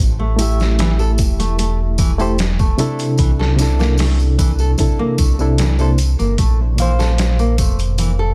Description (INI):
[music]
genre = trip hop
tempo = 75 BPM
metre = 4/4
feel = straight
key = A phrygian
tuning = A4 = 440 Hz
[part]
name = round analog bass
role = bass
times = 0.0-8.3 s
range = E1 to C2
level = -19 LUFS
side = equal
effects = none
[part]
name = nylon-string guitar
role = arpeggios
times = 0.2-8.3 s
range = E3 to A4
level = -26 LUFS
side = equal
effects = tape echo
[part]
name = barky reed electric piano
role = accompaniment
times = 0.4-8.3 s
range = Bb2 to F5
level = -23 LUFS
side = equal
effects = overdrive, harmonic tremolo, tape echo
[part]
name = trip hop sampler-style drum kit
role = drums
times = 0.4-8.2 s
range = hi-hat, kick drum, snare drum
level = -21 LUFS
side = equal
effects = none
[part]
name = tambourine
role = percussion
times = 0.4-8.2 s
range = none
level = -34 LUFS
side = equal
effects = none
[sound]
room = little or no reverb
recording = dense, heavily limited modern master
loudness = -16 LUFS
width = mono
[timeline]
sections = 0.0-8.3 A section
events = none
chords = 0.0 Am7; 3.2 C13; 6.4 Gm7 (rootless)